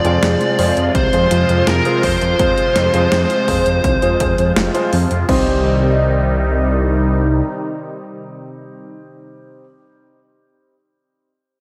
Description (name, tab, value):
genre	synthwave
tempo	83 BPM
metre	4/4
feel	straight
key	C minor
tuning	A4 = 440 Hz
part	bluesy overdriven lead guitar	melody	0.0-4.5 s	Bb4 to D5	-20 LUFS	equal	distortion, analog delay
part	phased analog pad	sustained chords	0.0-8.9 s	C3 to F4	-24 LUFS	equal	phaser, chorus, sidechain pumping
part	thumb-piano-like synth pluck	arpeggios	0.0-5.6 s	C4 to C5	-29 LUFS	equal	none
part	warm concert grand piano	stabs	0.0-9.6 s	G3 to C5	-26 LUFS	equal	vintage 12-bit sampler grit, analog delay
part	dark detuned saw bass	bass	0.0-7.4 s	F1 to F2	-20 LUFS	equal	tube saturation
part	clean 12-bit digital drum machine	drums	0.0-5.4 s	crash cymbal, hi-hat, snare drum	-26 LUFS	equal	none
part	electronic kick drum	drums	0.9-5.4 s	none	-24 LUFS	equal	none
room	wet lush hall reverb, RT60 2.8 s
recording	dreamy mix soaked in reverb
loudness	-15 LUFS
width	mono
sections	0.0-5.3 A section; 5.3-8.2 B section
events	none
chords	0.0 Fm; 5.3 Cm